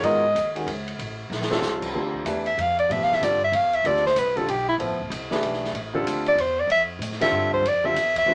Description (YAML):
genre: modal jazz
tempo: 189 BPM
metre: 3/4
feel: swing 63% on 8ths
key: D dorian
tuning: A4 = 440 Hz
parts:
  - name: breathy alto saxophone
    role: second line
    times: 0.0-0.6 s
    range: D#5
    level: -23 LUFS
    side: equal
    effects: none
  - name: clear grand piano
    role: accompaniment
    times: 0.0-8.3 s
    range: C3 to C#5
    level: -30 LUFS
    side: equal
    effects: none
  - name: upright bass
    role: bass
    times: 0.0-8.3 s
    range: D1 to A2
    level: -36 LUFS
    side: equal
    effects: none
  - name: open jazz drum kit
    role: drums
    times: 0.0-8.2 s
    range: crash cymbal, hi-hat, kick drum, ride cymbal, snare drum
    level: -34 LUFS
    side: equal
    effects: none
  - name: breathy soprano saxophone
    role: melody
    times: 2.5-8.3 s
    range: E4 to F5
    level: -22 LUFS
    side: equal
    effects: none
room: moderate studio ambience, RT60 0.5 s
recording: none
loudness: -24 LUFS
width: mono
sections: 0.0-1.9 A section; 1.9-8.3 A section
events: alto saxophone solo 0.0-1.9; drum fill 1.3-1.6; soprano saxophone solo 1.9-8.3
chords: 0.0 G#m11; 1.0 A7alt; 1.9 Dm11